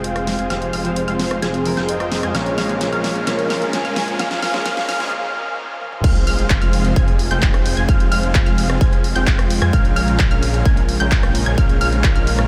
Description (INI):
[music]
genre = EDM, festival progressive house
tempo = 130 BPM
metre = 4/4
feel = straight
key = F minor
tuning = A4 = 438 Hz
[part]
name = airy dreamy lead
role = melody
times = 0.0-5.1 s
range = Ab4 to Ab5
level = -28 LUFS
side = equal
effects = chorus, tape echo
[part]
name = clear concert grand piano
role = accompaniment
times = 0.0-6.1 s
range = Bb2 to C5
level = -31 LUFS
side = equal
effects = none
[part]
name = lush unison pad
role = sustained chords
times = 0.0-12.5 s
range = C3 to C5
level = -30 LUFS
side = equal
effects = none
[part]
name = unison pluck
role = arpeggios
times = 0.0-12.5 s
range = F6 to Ab6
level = -29 LUFS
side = equal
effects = sidechain pumping, tape echo
[part]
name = dense compressed supersaw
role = riff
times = 0.0-12.5 s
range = Ab3 to Ab5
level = -27 LUFS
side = equal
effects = sidechain pumping, low-pass filter, tape echo
[part]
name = detuned saw bass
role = bass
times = 0.0-12.5 s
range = F1 to F2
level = -25 LUFS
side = equal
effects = chorus, sidechain pumping
[part]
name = big-room dance drum kit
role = drums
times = 0.0-12.5 s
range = crash cymbal, handclaps, hi-hat, rim click, snare drum, toms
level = -28 LUFS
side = equal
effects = none
[part]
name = riser and sub drop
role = sound effects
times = 0.0-7.9 s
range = none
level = -32 LUFS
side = equal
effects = none
[part]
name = electronic kick drum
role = drums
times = 6.0-12.1 s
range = none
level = -18 LUFS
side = equal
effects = none
[sound]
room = moderate huge ambient reverb, RT60 8.9 s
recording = dreamy mix soaked in reverb, high-pass filter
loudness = -18 LUFS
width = mono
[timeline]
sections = 0.0-6.0 A section; 6.0-12.5 B section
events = build-up 0.0-6.0; drum fill 0.0-5.1, 5.8; filter sweep on supersaw synth 0.0-6.0; filter sweep 0.0-6.0; break 5.1-6.0; drop 6.0-12.5; impact 6.0-7.9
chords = 0.0 Fm; 2.3 Bbm7; 6.0 Fm; 9.7 Bbm7